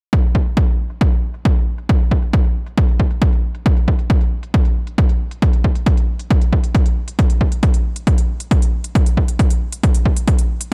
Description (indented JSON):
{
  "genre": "trance",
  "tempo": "136 BPM",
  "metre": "4/4",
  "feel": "straight",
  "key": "none",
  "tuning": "none",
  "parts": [
    { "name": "electronic hi-hat", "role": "drums", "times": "0.1-10.7 s", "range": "none", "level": "-33 LUFS", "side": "equal", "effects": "overdrive, sidechain pumping on hats, low-pass filter on hats, low-pass filter on room" },
    { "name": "electronic kick drum", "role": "drums", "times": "0.1-10.4 s", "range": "none", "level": "-16 LUFS", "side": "equal", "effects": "overdrive" }
  ],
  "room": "little or no reverb",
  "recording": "dark, warm production",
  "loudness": "-17 LUFS",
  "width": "mono",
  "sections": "0.1-10.7 A section",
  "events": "filter sweep on drum 0.1-10.7",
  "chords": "none"
}